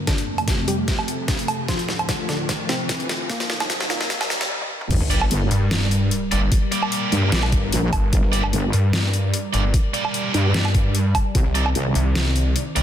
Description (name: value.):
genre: heavy wobble dubstep.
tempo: 149 BPM.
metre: 4/4.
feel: swing 53% on 16ths, half-time.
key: G minor.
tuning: A4 = 440 Hz.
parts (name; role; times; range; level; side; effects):
lush unison pad; sustained chords; 0.0-12.8 s; C2 to D5; -29 LUFS; left 1 dB; chorus, sidechain pumping.
riser and sub drop; sound effects; 0.4-6.5 s; none; -30 LUFS; equal; none.
wide unison pluck; melody; 0.1-4.5 s; Bb2 to G4; -30 LUFS; left 1 dB; cassette tape, ping-pong delay.
dubstep drum kit; drums; 0.1-12.8 s; crash cymbal, hi-hat, snare drum, toms, woodblock; -25 LUFS; equal; overdrive, high-pass filter on snare, small room reverb, high-pass filter on hats, high-pass filter on perc, high-pass filter on toms, high-pass filter on cymbals.
electronic kick drum; drums; 0.1-11.4 s; none; -21 LUFS; equal; overdrive, small room reverb.
wobble bass; bass; 4.9-11.9 s; G1 to G2; -20 LUFS; equal; chorus, overdrive.
snarling distorted saw bass; bass; 5.0-12.8 s; G1 to G2; -21 LUFS; equal; distortion, overdrive.
sludgy distorted guitar; stabs; 5.1-12.8 s; Bb3 to D5; -27 LUFS; right 4 dB; overdrive, ping-pong delay.
room: light reverb.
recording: dense, heavily limited modern master, high-pass filter.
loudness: -18 LUFS.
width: side -10 dB against mid.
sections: 0.0-4.9 A section; 4.9-12.8 B section.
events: build-up 0.0-4.9; drum fill 0.0-4.5, 4.5-4.9; riser 0.4-4.5; filter sweep on analog synth pad 0.0-4.9; filter sweep on synth pluck 0.0-4.9; filter sweep 0.0-4.9; break 4.5-4.9; drop 4.9-12.8; impact 4.9-6.5.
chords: 0.1 F; 1.7 Dm; 3.3 Cm; 4.9 Gm; 11.3 Cmadd9.